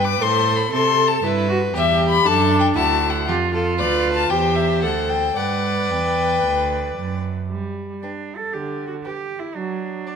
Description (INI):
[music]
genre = quick classical-period movement for string quartet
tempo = 117 BPM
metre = 4/4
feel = straight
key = G major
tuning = A4 = 444 Hz
[part]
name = warm violin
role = melody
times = 0.0-10.2 s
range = D5 to D6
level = -21 LUFS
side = left 8 dB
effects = none
[part]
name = rich violin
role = second line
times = 0.0-10.1 s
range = F#4 to D5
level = -25 LUFS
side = left 1 dB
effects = none
[part]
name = rich viola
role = accompaniment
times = 0.0-10.0 s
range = D3 to B4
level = -24 LUFS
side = right 2 dB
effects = none
[part]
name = rich cello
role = bass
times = 0.0-10.2 s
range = D2 to A4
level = -24 LUFS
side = right 5 dB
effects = none
[sound]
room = wet recital hall reverb, RT60 1.7 s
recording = none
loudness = -18 LUFS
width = side -6 dB against mid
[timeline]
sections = 0.0-7.5 A section; 7.5-10.2 A section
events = none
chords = 0.2 Am; 1.2 Em/G; 2.3 D/F#; 3.3 Dm6; 4.3 C/E; 4.8 D; 5.4 G; 7.5 G5; 9.6 D/F#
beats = 0.21 0.72 | 1.23 1.75 2.26 2.77 | 3.28 3.80 4.31 4.83 | 5.36 5.90 6.44 6.97 | 7.50 8.02 8.53 9.04 | 9.55 10.06